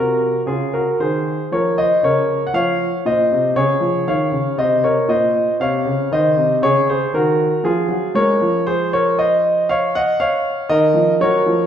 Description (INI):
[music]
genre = classical, baroque-style suite movement for grand piano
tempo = 59 BPM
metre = 4/4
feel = rubato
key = unclear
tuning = A4 = 439 Hz
[part]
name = warm grand piano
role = solo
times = 0.0-11.7 s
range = Bb2 to Gb5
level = -15 LUFS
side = equal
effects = none
[sound]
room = wet recital hall reverb, RT60 1.6 s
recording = heard from further back in the room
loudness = -15 LUFS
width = side -9 dB against mid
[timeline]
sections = 0.0-11.7 A section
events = none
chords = 0.0 Bbm; 2.5 Db; 4.6 Dbmaj13/Bb; 6.6 Db; 10.7 Ebm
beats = 0.47 1.50 | 2.52 3.55 4.57 5.60 | 6.62 7.62 8.64 9.67 | 10.68